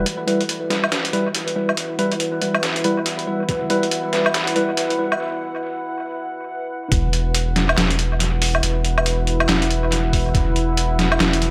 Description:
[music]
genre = deep dubstep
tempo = 140 BPM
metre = 4/4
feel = swing 61% on 16ths, half-time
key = E minor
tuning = A4 = 441 Hz
[part]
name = deep dark ambient pad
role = sustained chords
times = 0.0-11.5 s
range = E4 to F#5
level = -28 LUFS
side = equal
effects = chorus, built-in reverb
[part]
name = tine electric piano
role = stabs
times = 0.0-5.1 s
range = G3 to B4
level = -25 LUFS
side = equal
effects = medium tremolo, low-pass filter, dub echo
[part]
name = saturated sub bass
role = bass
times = 0.0, 6.9-11.5 s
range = E1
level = -23 LUFS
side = equal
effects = none
[part]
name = trip hop sampler-style drum kit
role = drums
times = 0.1-11.5 s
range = handclaps, hi-hat, snare drum, woodblock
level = -24 LUFS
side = equal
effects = high-pass filter on hats, high-pass filter on perc, high-pass filter on snare, high-pass filter on room, analog delay
[part]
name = electronic kick drum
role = drums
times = 3.5-3.6, 6.9-7.0, 10.1-10.4 s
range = none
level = -24 LUFS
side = equal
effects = none
[sound]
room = moderate plate reverb, RT60 1.2 s, digital ambience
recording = echo-heavy mix, high-pass filter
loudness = -20 LUFS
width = mono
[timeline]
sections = 0.1-6.9 A section; 6.9-11.5 B section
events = build-up 0.1-6.9; filter sweep 0.1-6.9; break 5.2-6.9; drop 6.9-11.5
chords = 0.1 Em; 6.9 E5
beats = | 0.06 0.49 0.92 1.35 | 1.77 2.20 2.63 3.06 | 3.49 3.92 4.35 4.77 | 5.20 5.63 6.06 6.49 | 6.92 7.35 7.77 8.20 | 8.63 9.06 9.49 9.92 | 10.35 10.77 11.20

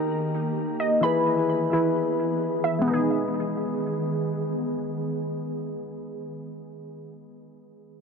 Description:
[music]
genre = hip hop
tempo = 130 BPM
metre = 4/4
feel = half-time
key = G# harmonic minor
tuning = A4 = 440 Hz
[part]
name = soft electric-piano-like synth keys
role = accompaniment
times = 0.0-8.0 s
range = D#3 to D#5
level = -28 LUFS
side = left 4 dB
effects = chorus, low-pass filter
[part]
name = ethereal airy pad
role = sustained chords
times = 0.0-6.2 s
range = D#3 to G#4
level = -30 LUFS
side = right 1 dB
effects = ensemble chorus, built-in reverb, low-pass filter
[part]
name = glassy wavetable pluck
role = arpeggios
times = 0.0-6.3 s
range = B3 to B5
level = -27 LUFS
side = right 3 dB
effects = chorus, low-pass filter, tape echo
[sound]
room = light reverb, digital ambience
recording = none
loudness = -23 LUFS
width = side -5 dB against mid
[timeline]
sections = 0.0-2.9 A section; 2.9-6.6 B section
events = filter sweep 0.0-2.9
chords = 0.0 D#; 1.0 E; 2.9 G#m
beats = 0.11 0.57 | 1.03 1.49 1.95 2.41 | 2.88 3.34 3.80 4.26 | 4.72 5.18 5.64 6.11

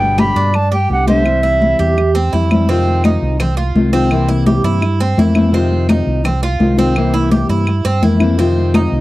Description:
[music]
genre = latin, Cuban son and guajira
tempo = 168 BPM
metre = 4/4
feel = straight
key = unclear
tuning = A4 = 438 Hz
[part]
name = breathy silver concert flute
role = melody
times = 0.0-2.1 s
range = E5 to B5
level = -15 LUFS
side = right 1 dB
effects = none
[part]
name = nylon-string guitar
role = accompaniment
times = 0.0-9.0 s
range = B2 to G4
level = -18 LUFS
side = left 4 dB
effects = none
[part]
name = Cuban tres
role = arpeggios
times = 0.0-9.0 s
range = B3 to C5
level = -20 LUFS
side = right 4 dB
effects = none
[part]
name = fingered electric bass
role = bass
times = 0.0-9.0 s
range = G1 to G2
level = -16 LUFS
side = right 1 dB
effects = none
[part]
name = congas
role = percussion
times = 0.0-9.0 s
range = none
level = -17 LUFS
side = left 1 dB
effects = none
[part]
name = claves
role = percussion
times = 0.2-8.9 s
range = none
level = -24 LUFS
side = left 3 dB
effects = none
[sound]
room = little or no reverb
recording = dry, close 1970s-style studio recording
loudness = -11 LUFS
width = side -17 dB against mid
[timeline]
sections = 0.0-2.7 A section; 2.7-9.0 B section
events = none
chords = 0.0 G; 1.3 C; 2.7 Fm7; 4.1 C7; 5.5 Fm7; 7.0 C7; 8.4 Fm7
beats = 0.19 0.55 0.90 | 1.26 1.62 1.98 2.33 | 2.69 3.04 3.40 3.76 | 4.11 4.47 4.82 5.18 | 5.54 5.89 6.25 6.60 | 6.96 7.32 7.67 8.03 | 8.39 8.74

